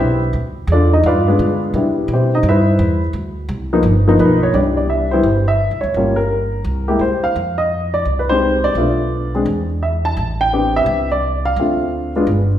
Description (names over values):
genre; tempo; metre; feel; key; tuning
jazz piano trio; 171 BPM; 4/4; swing 64% on 8ths; C major; A4 = 440 Hz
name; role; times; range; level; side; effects
warm upright piano; melody; 0.0-12.5 s; E3 to A5; -16 LUFS; left 1 dB; none
upright bass; bass; 0.0-12.6 s; G1 to D3; -18 LUFS; equal; none
room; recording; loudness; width
wet recital hall reverb, RT60 1.4 s; recorded in a church or concert hall; -14 LUFS; side -11 dB against mid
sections
0.0-4.5 A section; 4.5-12.6 B section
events
upright piano solo 0.0-4.5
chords
0.3 Dmadd9; 1.0 G7b9; 1.7 Cmaj9; 3.1 D7(no3); 3.8 G7alt; 4.5 Cmaj9; 5.9 Gm7b5; 6.7 C7(no3); 7.4 Fm9; 8.8 Bm7b5; 9.5 N.C.; 10.2 Am11; 11.6 Dm7